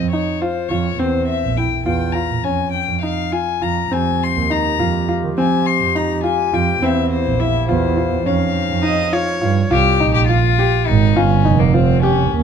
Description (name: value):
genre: contemporary instrumental, chamber music in an uneven meter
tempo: 207 BPM (eighths)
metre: 5/8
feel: straight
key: F minor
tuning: A4 = 440 Hz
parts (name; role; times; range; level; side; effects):
- rich violin; melody; 0.0-12.4 s; Bb3 to C6; -20 LUFS; left 10 dB; none
- clear concert grand piano; arpeggios; 0.0-12.4 s; C4 to G4; -21 LUFS; left 1 dB; none
- warm double bass; bass; 0.0-12.4 s; F1 to F3; -18 LUFS; right 5 dB; none
- warm woodwind section; sustained chords; 3.9-9.7 s; C3 to G4; -27 LUFS; left 1 dB; none
- clear viola; second line; 8.8-9.7 s; Db5 to Eb5; -22 LUFS; right 1 dB; none
room: light reverb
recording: close, detailed microphones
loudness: -15 LUFS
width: side -7 dB against mid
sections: 0.0-9.7 A section; 9.7-12.4 B section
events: none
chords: 0.0 F5; 1.0 C7; 2.4 Dbadd9/F; 3.9 Fmadd9; 6.8 C7; 8.3 Dbadd9/F; 9.7 C7sus4 (rootless); 11.2 Eb13/F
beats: 0.13 0.42 0.71 | 1.00 1.29 1.57 1.86 2.15 | 2.44 2.73 3.03 3.32 3.62 | 3.92 4.21 4.50 4.79 5.08 | 5.38 5.66 5.95 6.24 6.53 | 6.82 7.11 7.39 7.68 7.96 | 8.25 8.54 8.83 9.12 9.41 | 9.71 10.00 10.29 10.58 10.87 | 11.16 11.46 11.75 12.04 12.32